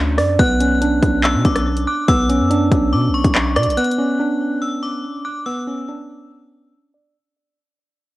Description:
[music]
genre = hip hop, drill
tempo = 142 BPM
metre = 4/4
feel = half-time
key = B minor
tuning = A4 = 440 Hz
[part]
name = mellow tine electric piano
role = arpeggios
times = 0.0-7.2 s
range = B3 to D6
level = -18 LUFS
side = right 1 dB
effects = low-pass filter, tape echo
[part]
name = hard-hitting 808-style bass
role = bass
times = 0.0-3.8 s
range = B1 to B2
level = -20 LUFS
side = left 1 dB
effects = none
[part]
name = drill drum kit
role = drums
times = 0.2-4.0 s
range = handclaps, hi-hat, kick drum, rim click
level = -19 LUFS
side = left 1 dB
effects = cassette tape
[part]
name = metallic FM bell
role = second line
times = 0.4-6.3 s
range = C#6 to F#6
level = -24 LUFS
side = left 3 dB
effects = chorus, tape echo
[sound]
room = light reverb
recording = home recording on cassette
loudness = -15 LUFS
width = side -17 dB against mid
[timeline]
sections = 0.0-3.8 A section; 3.8-7.2 B section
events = fade-out 3.8-7.2; filter sweep on tine electric piano 3.8-7.2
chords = 0.0 Bmadd9

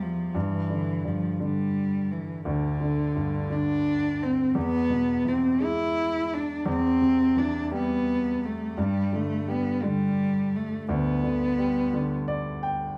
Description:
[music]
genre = pop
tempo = 57 BPM (dotted quarters)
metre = 6/8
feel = straight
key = unclear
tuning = A4 = 440 Hz
[part]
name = dark cello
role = melody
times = 0.0-12.6 s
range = D3 to E4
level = -28 LUFS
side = equal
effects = none
[part]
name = warm baby grand piano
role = accompaniment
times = 0.0-13.0 s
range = D2 to G5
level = -31 LUFS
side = equal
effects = none
[sound]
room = wet studio reverb, RT60 0.5 s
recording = band playing live in one room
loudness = -26 LUFS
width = mono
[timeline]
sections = 0.0-13.0 A section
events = grand piano fill 11.9-13.0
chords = 0.4 G5; 4.6 E; 6.7 Cmaj7/E; 8.8 G

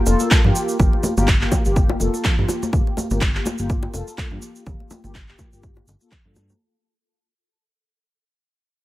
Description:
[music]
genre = afro house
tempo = 124 BPM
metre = 4/4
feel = swing 56% on 16ths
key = G minor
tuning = A4 = 440 Hz
[part]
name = mellow synth brass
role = stabs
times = 0.0-6.6 s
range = Bb3 to A4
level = -25 LUFS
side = left 2 dB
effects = chorus, sidechain pumping, dub echo
[part]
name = smooth synth bass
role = bass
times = 0.1-6.5 s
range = F1 to G2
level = -22 LUFS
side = equal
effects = sidechain pumping
[part]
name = bongos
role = percussion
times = 0.1-6.5 s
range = none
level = -28 LUFS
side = left 4 dB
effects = none
[part]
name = cabasa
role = percussion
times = 0.1-6.6 s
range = none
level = -32 LUFS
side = right 2 dB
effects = none
[part]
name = congas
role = percussion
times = 0.2-6.6 s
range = none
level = -27 LUFS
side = right 2 dB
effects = none
[part]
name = electronic handclaps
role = drums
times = 0.3-6.2 s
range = none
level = -23 LUFS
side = equal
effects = none
[part]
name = electronic kick drum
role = drums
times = 0.3-6.2 s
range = none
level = -19 LUFS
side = equal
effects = none
[sound]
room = small room ambience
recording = none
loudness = -17 LUFS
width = side -16 dB against mid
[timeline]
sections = 0.0-6.6 A section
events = fade-out 0.0-6.6; filter sweep on analog polysynth 0.0-6.6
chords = 0.0 Gm7

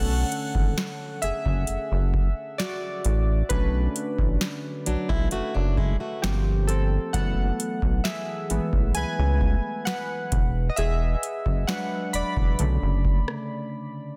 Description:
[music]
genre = contemporary R&B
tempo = 66 BPM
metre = 4/4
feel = straight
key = B dorian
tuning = A4 = 440 Hz
[part]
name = warm analog keys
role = accompaniment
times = 0.0-14.2 s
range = C#3 to B5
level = -32 LUFS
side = equal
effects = chorus
[part]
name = rubbery square bass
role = bass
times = 0.0-13.2 s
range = E1 to C#2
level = -26 LUFS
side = equal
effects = none
[part]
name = booming analog drum machine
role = drums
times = 0.3-13.5 s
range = hi-hat, kick drum, rim click, snare drum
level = -28 LUFS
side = equal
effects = none
[part]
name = fingerpicked plugged-in swing-style acoustic guitar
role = arpeggios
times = 4.9-6.4 s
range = F#3 to F#4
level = -32 LUFS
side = equal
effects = digital delay
[sound]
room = little or no reverb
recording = dense, heavily limited modern master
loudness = -25 LUFS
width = mono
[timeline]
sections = 0.0-14.2 A section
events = synth keys solo 0.0-14.2; break 13.5-14.2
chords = 0.0 Bm7; 6.2 Gm11; 7.1 F#m11; 10.3 E9; 12.6 Bm9

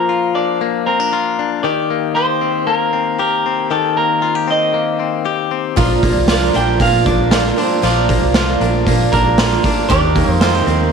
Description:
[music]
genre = jangly indie pop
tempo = 116 BPM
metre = 4/4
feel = straight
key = Bb major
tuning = A4 = 440 Hz
[part]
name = clean electric guitar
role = melody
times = 0.0-10.9 s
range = A4 to G5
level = -18 LUFS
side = right 2 dB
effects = none
[part]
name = direct-recorded clean electric guitar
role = arpeggios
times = 0.0-10.9 s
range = Eb3 to G4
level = -18 LUFS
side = left 10 dB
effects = none
[part]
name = picked twelve-string acoustic guitar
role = accompaniment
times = 5.8-10.9 s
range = Bb2 to Bb4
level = -19 LUFS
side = right 14 dB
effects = none
[part]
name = vintage muted fingered electric bass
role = bass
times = 5.8-10.9 s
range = Bb1 to Bb2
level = -18 LUFS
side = right 2 dB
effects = none
[part]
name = raw garage drum kit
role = drums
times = 5.8-10.8 s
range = hi-hat, kick drum, snare drum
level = -17 LUFS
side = right 2 dB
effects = none
[part]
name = growling trumpet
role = second line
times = 6.3-10.9 s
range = Bb3 to G4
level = -27 LUFS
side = right 12 dB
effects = tape echo
[sound]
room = light reverb, small room ambience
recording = 1960s-style stereo with parts hard left and right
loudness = -13 LUFS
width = side -6 dB against mid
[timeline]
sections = 0.0-10.9 A section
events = none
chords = 0.0 Bb; 1.6 Cm7; 5.8 Bb; 9.9 Eb6

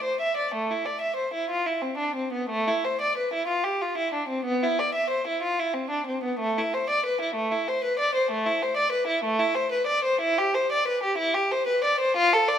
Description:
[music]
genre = classical, baroque-style suite movement for unaccompanied violin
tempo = 62 BPM (dotted quarters)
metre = 12/8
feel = rubato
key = A minor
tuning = A4 = 440 Hz
[part]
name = rich violin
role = solo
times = 0.0-12.6 s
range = A3 to E5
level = -23 LUFS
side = equal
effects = none
[sound]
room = moderate recital hall reverb, RT60 1.5 s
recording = none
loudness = -23 LUFS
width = side -9 dB against mid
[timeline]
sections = 0.0-12.6 A section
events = none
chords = none

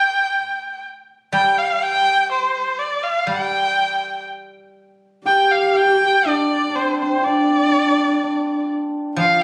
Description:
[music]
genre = chinese traditional, Chinese chamber ensemble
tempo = 62 BPM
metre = 2/4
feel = rubato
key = G shang mode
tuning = A4 = 440 Hz
[part]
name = rich erhu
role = melody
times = 0.0-9.4 s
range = C5 to G5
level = -20 LUFS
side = equal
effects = none
[part]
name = guzheng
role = accompaniment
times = 0.0-9.4 s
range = A2 to G3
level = -29 LUFS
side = equal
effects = none
[part]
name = dark horsehead fiddle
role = second line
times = 5.3-9.4 s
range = D4 to G4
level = -23 LUFS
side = equal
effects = none
[part]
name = hammered dulcimer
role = second line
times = 5.3-9.4 s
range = C4 to G4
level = -24 LUFS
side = equal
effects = none
[sound]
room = moderate recital hall reverb, RT60 1.4 s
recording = recorded on a phone in the room, studio reverb, compression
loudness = -19 LUFS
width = mono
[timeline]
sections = 0.0-5.3 A section; 5.3-9.4 B section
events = none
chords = none

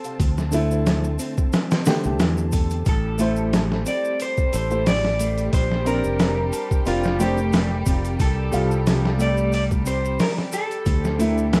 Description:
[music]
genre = trip hop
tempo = 90 BPM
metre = 4/4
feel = swing 54% on 16ths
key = unclear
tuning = A4 = 441 Hz
[part]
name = warm symphonic violin section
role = sustained chords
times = 0.0-11.6 s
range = G3 to A5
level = -36 LUFS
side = equal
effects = none
[part]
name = semi-hollow electric guitar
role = arpeggios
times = 0.0-11.6 s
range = E3 to A5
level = -32 LUFS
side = equal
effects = harmonic tremolo, digital delay
[part]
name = trip hop sampler-style drum kit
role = drums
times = 0.0-11.6 s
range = hi-hat, kick drum, snare drum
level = -24 LUFS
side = equal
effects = none
[part]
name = maracas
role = percussion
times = 0.0-11.6 s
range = none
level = -41 LUFS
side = equal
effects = none
[part]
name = modern bright fingered electric bass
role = bass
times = 0.2-11.6 s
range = F1 to E2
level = -26 LUFS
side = equal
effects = none
[part]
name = dark upright piano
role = accompaniment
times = 0.5-11.6 s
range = C3 to C5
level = -29 LUFS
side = equal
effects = tremolo, tape echo
[part]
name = electric guitar at the edge of break-up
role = melody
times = 2.9-11.6 s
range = F4 to D5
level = -28 LUFS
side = equal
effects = tape echo
[sound]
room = little or no reverb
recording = rough home demo mix, vinyl crackle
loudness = -21 LUFS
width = mono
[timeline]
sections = 0.0-11.6 A section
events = none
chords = 0.2 Dsus2; 2.9 Am; 5.5 Bbadd9; 8.2 Csus4; 10.9 Dsus2

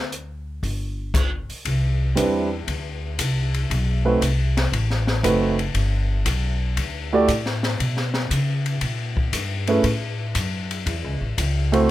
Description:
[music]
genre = jazz, small-group swing and bop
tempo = 117 BPM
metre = 4/4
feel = swing 68% on 8ths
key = unclear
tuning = A4 = 441 Hz
[part]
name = upright bass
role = bass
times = 0.0-11.9 s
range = F#1 to C#3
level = -23 LUFS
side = equal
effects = none
[part]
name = open jazz drum kit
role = drums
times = 0.1-11.8 s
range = crash cymbal, hi-hat, kick drum, ride cymbal, rim click, snare drum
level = -26 LUFS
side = left 2 dB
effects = none
[part]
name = dark grand piano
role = accompaniment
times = 2.2-11.9 s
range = G3 to D5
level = -19 LUFS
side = right 3 dB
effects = none
[sound]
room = moderate club reverb, RT60 0.5 s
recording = none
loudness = -20 LUFS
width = side -14 dB against mid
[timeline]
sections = 0.0-1.6 A section; 1.6-11.9 B section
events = none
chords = 0.0 N.C.; 1.6 Cmaj9; 3.7 B7b9; 5.7 Em11 (rootless); 7.8 Bsus2; 8.8 Gdim7; 9.8 A

